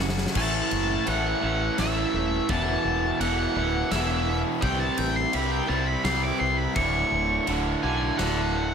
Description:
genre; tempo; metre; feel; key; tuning
post-rock; 84 BPM; 3/4; straight; unclear; A4 = 438 Hz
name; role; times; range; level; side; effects
shimmering ambient pad; sustained chords; 0.0-8.7 s; F#3 to F#5; -38 LUFS; equal; none
crunchy overdriven guitar; riff; 0.0-8.7 s; D2 to C4; -28 LUFS; right 8 dB; none
fingered electric bass; bass; 0.0-8.7 s; D1 to C2; -29 LUFS; equal; none
big rock drum kit; drums; 0.1-8.4 s; crash cymbal, kick drum, ride cymbal, snare drum; -32 LUFS; equal; none
overdriven electric guitar; riff; 0.3-8.7 s; D2 to C4; -31 LUFS; left 15 dB; none
octave-fuzz lead guitar; melody; 0.4-8.7 s; E5 to D6; -28 LUFS; left 1 dB; distortion, tape echo
room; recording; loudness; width
light reverb; none; -22 LUFS; side -7 dB against mid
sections
0.3-8.7 A section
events
drum fill 0.0-0.3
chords
0.3 A; 2.5 E7sus4; 4.6 Cmaj7; 6.8 Dmaj7

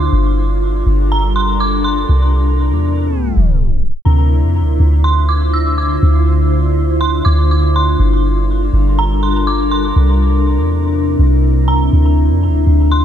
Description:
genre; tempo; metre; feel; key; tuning
hip hop, atmospheric cloud-rap; 122 BPM; 4/4; half-time; D minor; A4 = 440 Hz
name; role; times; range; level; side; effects
dark detuned synth bell; melody; 0.0-13.0 s; Bb5 to E6; -21 LUFS; right 2 dB; chorus, phaser, dub echo
glassy FM pad; sustained chords; 0.0-13.0 s; C3 to C5; -18 LUFS; left 2 dB; ensemble chorus, built-in reverb
soft 808-style bass; bass; 0.0-13.0 s; G1 to F2; -13 LUFS; equal; none
room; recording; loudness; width
digital ambience; echo-heavy mix, tape stop; -11 LUFS; side -10 dB against mid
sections
0.0-4.1 A section; 4.1-13.0 B section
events
tape stop 3.1-4.1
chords
0.1 Gm7; 2.1 C9; 4.1 Dm7; 8.0 Gm7; 10.0 C9; 11.9 Dm7

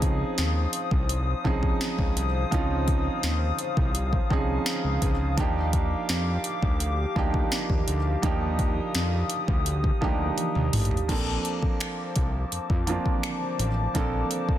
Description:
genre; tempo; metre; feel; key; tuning
contemporary R&B; 84 BPM; 4/4; straight; Bb major; A4 = 440 Hz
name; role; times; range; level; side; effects
felt-muted upright piano; accompaniment; 0.0-14.6 s; F3 to A4; -30 LUFS; right 4 dB; none
hollow soft pad; sustained chords; 0.0-14.6 s; G4 to Eb6; -33 LUFS; left 6 dB; chorus, sidechain pumping
fat analog bass; bass; 0.0-14.2 s; A1 to F2; -27 LUFS; equal; none
smooth R&B drum kit; drums; 0.0-14.6 s; crash cymbal, finger snaps, hi-hat, kick drum, snare drum, toms; -27 LUFS; equal; overdrive
room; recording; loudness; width
light reverb; dense, heavily limited modern master; -23 LUFS; side -12 dB against mid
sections
0.0-11.1 A section; 11.1-14.6 B section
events
drum fill 10.4-11.1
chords
0.0 Dbmaj9; 5.4 Ebmaj9; 11.1 Bbmaj9

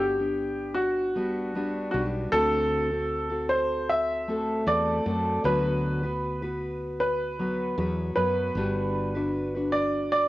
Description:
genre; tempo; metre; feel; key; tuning
acoustic pop; 77 BPM; 4/4; straight; G major; A4 = 440 Hz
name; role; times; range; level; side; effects
clear upright piano; melody; 0.0-10.3 s; F#4 to E5; -27 LUFS; equal; cassette tape
fingerpicked steel-string acoustic guitar; accompaniment; 0.0-10.3 s; D3 to B4; -29 LUFS; left 1 dB; cassette tape
woody fretless electric bass; bass; 0.0-10.3 s; G1 to F#2; -33 LUFS; equal; none
room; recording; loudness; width
light reverb, studio ambience; home recording on cassette; -24 LUFS; side -16 dB against mid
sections
0.0-10.3 A section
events
none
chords
0.0 Gmaj7; 2.3 D7; 5.4 Bm/D; 8.6 Gmaj7

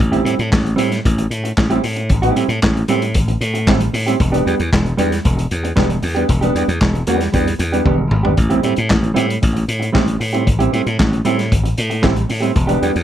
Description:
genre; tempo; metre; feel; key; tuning
disco; 115 BPM; 4/4; straight; A minor; A4 = 441 Hz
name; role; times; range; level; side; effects
mellow electric guitar; accompaniment; 0.0-13.0 s; G3 to G4; -19 LUFS; right 3 dB; none
slap bass; bass; 0.0-13.0 s; E1 to A2; -18 LUFS; equal; none
vintage drum kit; drums; 0.0-13.0 s; handclaps, hi-hat, kick drum, snare drum, toms; -19 LUFS; equal; none
room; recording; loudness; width
light reverb; none; -14 LUFS; side -11 dB against mid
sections
0.0-13.0 A section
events
drum fill 7.9-8.4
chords
0.0 Am7; 4.2 Em7; 8.4 Am7

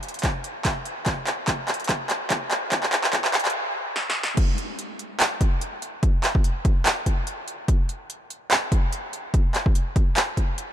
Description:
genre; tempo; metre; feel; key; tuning
future bass; 145 BPM; 4/4; swing 55% on 16ths, half-time; none; none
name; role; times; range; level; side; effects
big-room dance drum kit; drums; 0.0-10.7 s; crash cymbal, handclaps, hi-hat, snare drum; -24 LUFS; equal; none
electronic kick drum; drums; 0.2-10.5 s; none; -22 LUFS; equal; none
room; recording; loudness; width
light reverb; dark, warm production, high-pass filter; -21 LUFS; side -10 dB against mid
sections
0.0-4.4 A section; 4.4-10.7 B section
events
build-up 0.0-4.4; drum fill 0.0-3.5, 4.0-4.4; filter sweep 0.0-4.4; stop 3.5-4.4; drop 4.4-10.7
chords
none

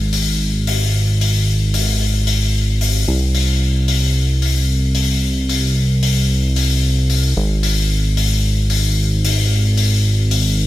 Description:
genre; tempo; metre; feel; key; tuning
nu-disco, nu disco; 112 BPM; 4/4; swing 56% on 16ths; unclear; A4 = 440 Hz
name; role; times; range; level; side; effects
fat analog bass; bass; 0.0-10.7 s; Ab1 to C2; -15 LUFS; equal; none
hi-hat; drums; 0.1-10.4 s; none; -20 LUFS; left 6 dB; none
room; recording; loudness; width
little or no reverb; bright 1980s-style digital production; -14 LUFS; side -15 dB against mid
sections
0.0-10.7 A section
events
none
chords
none

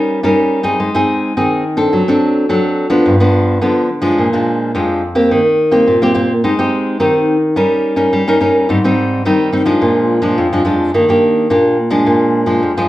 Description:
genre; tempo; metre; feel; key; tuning
samba; 107 BPM; 4/4; straight; Eb major from 5.3 s; A4 = 439 Hz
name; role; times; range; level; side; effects
nylon-string guitar; solo; 0.0-12.9 s; F2 to Bb4; -11 LUFS; equal; none
room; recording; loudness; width
moderate large studio reverb, RT60 0.8 s; band playing live in one room; -11 LUFS; side -15 dB against mid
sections
0.0-5.3 A section; 5.3-12.9 B section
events
none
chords
0.0 Eb7/G; 0.8 Ab; 1.9 D7/F#; 3.1 G7; 4.2 Bb7; 5.3 Eb6; 6.4 Abmaj7; 7.6 Eb7/G; 8.7 Abmaj7; 9.8 Bb7; 10.9 Ebmaj7; 12.1 Bb7

